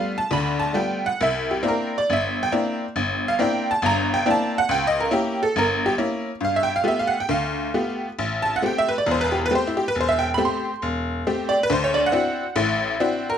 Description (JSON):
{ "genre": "solo jazz", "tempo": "137 BPM", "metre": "4/4", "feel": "swing 68% on 8ths, rubato", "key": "unclear", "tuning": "A4 = 436 Hz", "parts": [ { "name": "tack piano", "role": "solo", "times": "0.0-13.4 s", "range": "E1 to C6", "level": "-20 LUFS", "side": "equal", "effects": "none" } ], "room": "moderate large studio reverb, RT60 0.8 s", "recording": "minimal, uncompressed stereo recording", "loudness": "-20 LUFS", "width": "side -8 dB against mid", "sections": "0.0-13.4 A section", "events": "honky-tonk piano solo 0.0-13.4", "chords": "0.0 G9; 1.2 C9; 4.7 C#dim7; 6.4 G9; 8.2 Am7; 11.7 D9" }